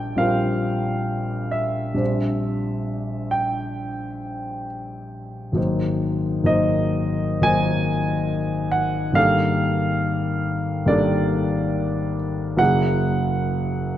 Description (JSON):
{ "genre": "classical, impressionist solo piano", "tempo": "68 BPM", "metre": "4/4", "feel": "uneven beats, rubato", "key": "unclear", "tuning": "A4 = 438 Hz", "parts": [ { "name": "warm grand piano", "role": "solo", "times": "0.0-14.0 s", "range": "Gb1 to Ab5", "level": "-20 LUFS", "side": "equal", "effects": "none" } ], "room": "moderate concert hall reverb, RT60 2.3 s", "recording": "none", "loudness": "-20 LUFS", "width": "side -11 dB against mid", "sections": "0.0-14.0 A section", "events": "none", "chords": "0.0 Bb69; 2.0 C9/Bb; 5.6 Ab9; 9.2 Gm9/Ab; 12.6 Gb9" }